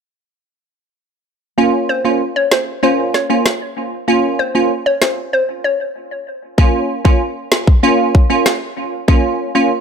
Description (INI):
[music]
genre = dancehall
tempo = 96 BPM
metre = 4/4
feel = straight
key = unclear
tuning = A4 = 441 Hz
[part]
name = wavetable chord stab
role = accompaniment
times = 1.6-9.7 s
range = Bb3 to F4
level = -15 LUFS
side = right 2 dB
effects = analog delay
[part]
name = hollow square pluck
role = melody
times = 1.9-5.7 s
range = C5 to Db5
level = -18 LUFS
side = left 2 dB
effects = chorus, analog delay
[part]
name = island pop drum kit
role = drums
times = 2.5-9.2 s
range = kick drum, rim click, snare drum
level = -12 LUFS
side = equal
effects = none
[sound]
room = light reverb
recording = echo-heavy mix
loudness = -13 LUFS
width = side -6 dB against mid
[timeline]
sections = 1.6-6.6 A section; 6.6-9.8 B section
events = break 5.3-6.6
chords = 1.6 Bbm